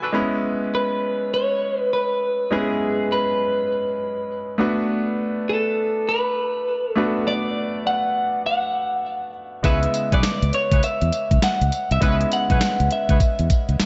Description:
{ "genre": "R&B, new jack swing", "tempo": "101 BPM", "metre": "4/4", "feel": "swing 63% on 16ths", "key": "unclear", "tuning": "A4 = 440 Hz", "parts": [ { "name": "clear concert grand piano", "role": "accompaniment", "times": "0.0-13.9 s", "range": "C#3 to B5", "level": "-28 LUFS", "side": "equal", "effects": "none" }, { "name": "warm horn section", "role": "stabs", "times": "0.0-0.1, 9.6-13.2 s", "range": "C#4 to B4", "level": "-33 LUFS", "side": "equal", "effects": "delay" }, { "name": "electric guitar at the edge of break-up", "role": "melody", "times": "0.7-13.8 s", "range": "G#4 to F#5", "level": "-25 LUFS", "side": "equal", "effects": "spring reverb, delay" }, { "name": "fingered electric bass", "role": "bass", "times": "9.6-13.8 s", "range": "B1 to E2", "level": "-24 LUFS", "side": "equal", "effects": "none" }, { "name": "gated 80s digital drum machine", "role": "drums", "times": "9.6-13.9 s", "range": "hi-hat, kick drum, snare drum, tambourine", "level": "-23 LUFS", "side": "equal", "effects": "gated reverb, gated reverb snare" } ], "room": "light reverb", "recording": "nothing above 7.8 kHz", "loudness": "-22 LUFS", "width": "mono", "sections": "0.1-13.9 A section", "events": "none", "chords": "0.1 C#m7; 4.6 Bm7; 9.6 C#m7" }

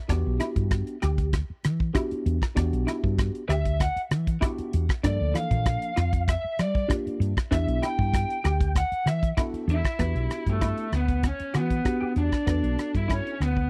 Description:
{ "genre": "electric jazz fusion", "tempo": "97 BPM", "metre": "4/4", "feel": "straight", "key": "E dorian", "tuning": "A4 = 439 Hz", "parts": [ { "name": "mellow tine electric piano", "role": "accompaniment", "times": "0.1-13.3 s", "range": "F3 to A4", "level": "-35 LUFS", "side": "equal", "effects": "phaser" }, { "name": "semi-hollow electric guitar", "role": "stabs", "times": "0.1-13.3 s", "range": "E3 to G4", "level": "-36 LUFS", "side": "equal", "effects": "ensemble chorus" }, { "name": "woody fretless electric bass", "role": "bass", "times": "0.1-13.7 s", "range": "B1 to G3", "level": "-28 LUFS", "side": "equal", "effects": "subtle chorus" }, { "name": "damped 70s drum kit", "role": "drums", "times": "0.1-13.7 s", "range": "hi-hat, kick drum, rim click", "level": "-30 LUFS", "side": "equal", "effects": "none" }, { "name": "lead guitar through a small cranked amp", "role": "melody", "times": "3.5-13.7 s", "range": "A3 to G5", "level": "-32 LUFS", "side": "equal", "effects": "overdrive" }, { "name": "bright concert flute", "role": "second line", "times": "9.7-13.7 s", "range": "A4 to E5", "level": "-38 LUFS", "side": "equal", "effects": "none" } ], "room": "small room reverb", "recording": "dry, close 1970s-style studio recording", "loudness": "-26 LUFS", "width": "mono", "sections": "0.0-10.0 A section; 10.0-13.7 B section", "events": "lead electric guitar solo 0.0-10.0", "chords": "0.1 Em9; 5.0 Gm9; 7.5 Em9" }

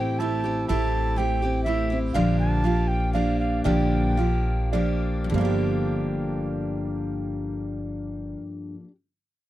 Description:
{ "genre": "acoustic folk duo or small band", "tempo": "100-123 BPM", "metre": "3/4", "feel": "straight", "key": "G dorian", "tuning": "A4 = 438 Hz", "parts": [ { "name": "alto recorder", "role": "melody", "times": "0.0-4.7 s", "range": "E5 to A5", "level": "-29 LUFS", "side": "right 2 dB", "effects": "none" }, { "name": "picked steel-string acoustic guitar", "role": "accompaniment", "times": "0.0-8.9 s", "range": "G2 to G4", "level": "-27 LUFS", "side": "left 3 dB", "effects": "none" }, { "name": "warm upright piano", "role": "arpeggios", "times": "0.0-8.4 s", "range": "G3 to G4", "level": "-30 LUFS", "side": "right 9 dB", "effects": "none" }, { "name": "upright bass", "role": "bass", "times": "0.0-8.3 s", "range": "G1 to Bb1", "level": "-27 LUFS", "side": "equal", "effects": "none" } ], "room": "little or no reverb", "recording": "dry, close 1970s-style studio recording", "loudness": "-22 LUFS", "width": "side -14 dB against mid", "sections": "0.0-5.3 A section; 5.3-8.9 B section", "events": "slowing down 2.1-5.3", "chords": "0.0 Am7; 2.1 Gm7/Bb; 5.3 Gm7" }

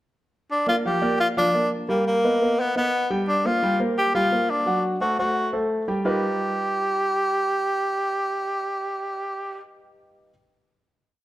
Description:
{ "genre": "latin", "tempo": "172 BPM", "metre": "4/4", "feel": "straight", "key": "G minor", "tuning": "A4 = 439 Hz", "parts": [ { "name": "breathy tenor saxophone", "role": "melody", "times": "0.5-9.6 s", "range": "Bb3 to G4", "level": "-22 LUFS", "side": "equal", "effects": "none" }, { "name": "warm concert grand piano", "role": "accompaniment", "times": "0.7-10.3 s", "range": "F3 to G5", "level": "-25 LUFS", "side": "equal", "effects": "none" } ], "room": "wet large studio reverb, RT60 1.4 s", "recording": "none", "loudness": "-21 LUFS", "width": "side -15 dB against mid", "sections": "0.5-6.1 A section; 6.1-8.8 final chord", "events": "none", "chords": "0.5 Gm7; 1.9 Gaug; 3.3 C5; 4.7 F#dim; 6.1 G7alt" }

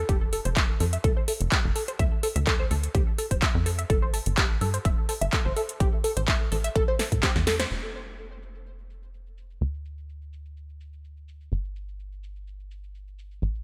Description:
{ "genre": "progressive house", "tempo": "126 BPM", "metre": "4/4", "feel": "straight", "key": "A minor", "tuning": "A4 = 440 Hz", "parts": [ { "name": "tight sequenced synth", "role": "arpeggios", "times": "0.0-7.6 s", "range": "G4 to E5", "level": "-33 LUFS", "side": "equal", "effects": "chorus, phaser, sidechain pumping, delay" }, { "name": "tight sequencer bass", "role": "bass", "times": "0.0-13.6 s", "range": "D1 to A2", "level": "-33 LUFS", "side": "equal", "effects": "sidechain pumping" }, { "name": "big-room dance drum kit", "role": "drums", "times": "0.1-13.6 s", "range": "handclaps, hi-hat, shaker, snare drum", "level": "-32 LUFS", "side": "equal", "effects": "low-pass filter on hats, studio reverb, low-pass filter on snare, low-pass filter on perc" }, { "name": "electronic kick drum", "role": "drums", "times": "0.1-7.3 s", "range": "none", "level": "-28 LUFS", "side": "equal", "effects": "studio reverb" } ], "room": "light reverb, digital ambience", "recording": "none", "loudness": "-26 LUFS", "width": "mono", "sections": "0.0-7.7 A section; 7.7-13.6 B section", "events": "drum fill 7.0-7.7; band accent 7.6", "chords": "0.1 F; 2.0 Dm; 3.9 Gsus2; 5.8 A5; 7.7 N.C." }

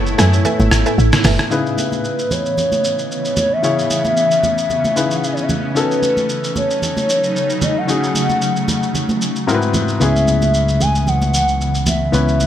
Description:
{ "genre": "amapiano", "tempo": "113 BPM", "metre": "4/4", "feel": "swing 55% on 16ths", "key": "C# minor", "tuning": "A4 = 440 Hz", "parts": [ { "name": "warm grand piano", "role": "accompaniment", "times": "0.0-12.5 s", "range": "G#2 to C#5", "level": "-22 LUFS", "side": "left 4 dB", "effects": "none" }, { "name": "granular cloud pad", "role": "sustained chords", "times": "0.0-12.5 s", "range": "A2 to D#5", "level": "-22 LUFS", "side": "equal", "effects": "built-in reverb" }, { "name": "mallet-like synth pluck", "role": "stabs", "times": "0.0-1.4 s", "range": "A4 to G#5", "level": "-23 LUFS", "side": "right 2 dB", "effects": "chorus, digital delay" }, { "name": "woody log drum bass", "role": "bass", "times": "0.0-1.4 s", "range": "F#1 to F#2", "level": "-14 LUFS", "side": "equal", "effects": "none" }, { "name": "lo-fi sampler-style drum kit", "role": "drums", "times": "0.1-12.5 s", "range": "hi-hat, rim click, shaker, snare drum", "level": "-23 LUFS", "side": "equal", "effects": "none" }, { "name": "congas", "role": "percussion", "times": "0.2-12.5 s", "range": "none", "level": "-24 LUFS", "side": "right 2 dB", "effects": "none" }, { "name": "hollow clarinet-like synth lead", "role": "melody", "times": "1.5-12.5 s", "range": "B4 to G#5", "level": "-19 LUFS", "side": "left 1 dB", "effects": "chorus, digital delay" }, { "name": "fingered electric bass", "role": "bass", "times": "10.0-12.5 s", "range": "C#2", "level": "-17 LUFS", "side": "equal", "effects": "none" } ], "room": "light reverb, digital ambience", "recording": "none", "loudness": "-14 LUFS", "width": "side -10 dB against mid", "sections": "0.0-1.5 A section; 1.5-12.5 B section", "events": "break 0.0-1.5; drop 0.0-1.5", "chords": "0.0 F#m11; 1.5 C#m9; 5.8 D#m7b5; 9.5 G#7alt; 10.0 C#m7" }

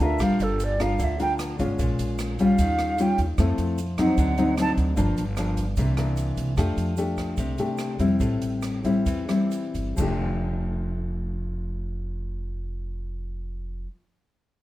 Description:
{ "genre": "bossa nova", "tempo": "127-151 BPM", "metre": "4/4", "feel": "straight", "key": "F major", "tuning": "A4 = 443 Hz", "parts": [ { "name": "breathy mellow silver concert flute", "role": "melody", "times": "0.0-4.7 s", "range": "A4 to A5", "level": "-28 LUFS", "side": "right 3 dB", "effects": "none" }, { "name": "nylon-string guitar", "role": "accompaniment", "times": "0.0-13.9 s", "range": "G2 to Bb4", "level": "-25 LUFS", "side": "left 2 dB", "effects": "none" }, { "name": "upright bass", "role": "bass", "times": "0.0-13.8 s", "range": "F1 to F2", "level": "-28 LUFS", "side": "right 1 dB", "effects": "none" }, { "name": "swinging big-band drum kit", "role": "drums", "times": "0.0-10.1 s", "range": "crash cymbal, hi-hat, kick drum, rim click, toms", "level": "-32 LUFS", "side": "equal", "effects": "none" }, { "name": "egg shaker", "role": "percussion", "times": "0.2-10.1 s", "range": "none", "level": "-47 LUFS", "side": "right 10 dB", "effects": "none" } ], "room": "moderate studio reverb, RT60 0.5 s", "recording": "none", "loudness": "-22 LUFS", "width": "side -15 dB against mid", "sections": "0.0-6.6 A section; 6.6-10.0 B section; 10.0-13.7 C section", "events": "flute solo 0.0-6.6; slowing down 6.6-10.0", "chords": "0.2 Gm7; 1.8 Bbm7; 2.6 Eb9; 3.4 Fmaj7; 4.2 D7b9; 5.0 Gm7; 5.8 C9; 6.6 F69; 8.2 Am7; 10.0 F69" }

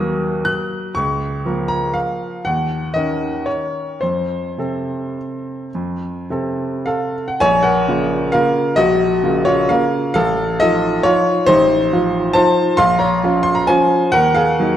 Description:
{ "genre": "classical, piano waltz", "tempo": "102-143 BPM", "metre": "3/4", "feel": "rubato", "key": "Bb minor", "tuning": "A4 = 445 Hz", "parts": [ { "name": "clear grand piano", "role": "solo", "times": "0.0-14.8 s", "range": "A1 to Gb6", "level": "-15 LUFS", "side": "equal", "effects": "none" } ], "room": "wet scoring stage reverb, RT60 1.7 s", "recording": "dark, warm production", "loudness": "-15 LUFS", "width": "side -10 dB against mid", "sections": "0.0-7.4 A section; 7.4-14.8 B section", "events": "none", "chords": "0.0 Ebm; 1.0 Bbm/Db; 2.5 Ebm7; 4.0 F; 7.4 Bbm; 10.1 F7/A; 12.8 Bbm; 14.1 Ebm" }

